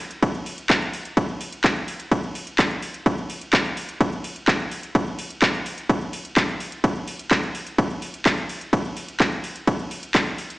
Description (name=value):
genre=EDM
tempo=127 BPM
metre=4/4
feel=straight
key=none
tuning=none
part: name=house drum kit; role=drums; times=0.1-10.6 s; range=handclaps, hi-hat, ride cymbal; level=-26 LUFS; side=equal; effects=overdrive
part: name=electronic kick drum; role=drums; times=0.2-10.2 s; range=none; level=-22 LUFS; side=equal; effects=overdrive
room=light reverb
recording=played on a big sound system in a bare room, large studio reverb, small speaker sound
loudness=-21 LUFS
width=side -21 dB against mid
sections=0.0-10.6 A section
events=none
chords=none